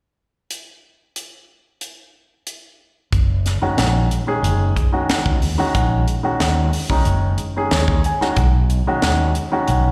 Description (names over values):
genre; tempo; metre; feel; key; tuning
electric jazz fusion; 92 BPM; 4/4; straight; F# major; A4 = 441 Hz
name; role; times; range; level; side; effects
tight funk drum kit; drums; 0.5-9.8 s; hi-hat, kick drum, snare drum; -24 LUFS; equal; none
fretless electric bass; bass; 3.1-9.9 s; F#1 to D#2; -20 LUFS; equal; lush chorus
warm grand piano; accompaniment; 3.6-9.9 s; D#3 to G#5; -23 LUFS; equal; slapback echo
room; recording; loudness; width
small room ambience; live gig heard through the venue's PA, recital hall reverb; -18 LUFS; mono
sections
0.5-3.1 A section; 3.1-9.9 B section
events
grand piano fill 7.4-8.4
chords
0.5 N.C.; 3.1 F#sus2; 8.4 B69